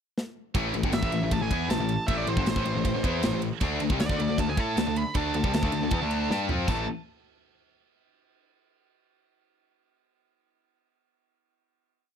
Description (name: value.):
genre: heavy metal.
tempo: 157 BPM.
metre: 4/4.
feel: straight.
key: A minor.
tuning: A4 = 444 Hz.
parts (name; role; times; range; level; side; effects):
tight metal drum kit; drums; 0.2-6.8 s; crash cymbal, kick drum, ride cymbal, snare drum, toms; -30 LUFS; equal; none.
scooped high-gain guitar; riff; 0.5-6.8 s; G2 to A4; -33 LUFS; right 14 dB; distortion.
fuzz picked electric bass; bass; 0.5-6.9 s; G1 to A2; -31 LUFS; right 1 dB; overdrive.
high-gain distorted guitar; riff; 0.6-6.8 s; G2 to A4; -34 LUFS; left 1 dB; distortion.
tight distorted guitar; riff; 0.6-6.8 s; G2 to A4; -31 LUFS; left 13 dB; distortion.
high-gain lead guitar; melody; 0.9-6.9 s; C5 to B5; -32 LUFS; right 3 dB; distortion, slapback echo.
room: small room ambience.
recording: dry, close 1970s-style studio recording.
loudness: -24 LUFS.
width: side -8 dB against mid.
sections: 0.0-0.5 pickup bar; 0.5-6.7 riff; 6.7-8.2 final chord.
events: drum fill 0.2-0.5, 6.3-6.7.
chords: 0.0 N.C.; 0.5 Am; 3.6 D5; 6.7 A5.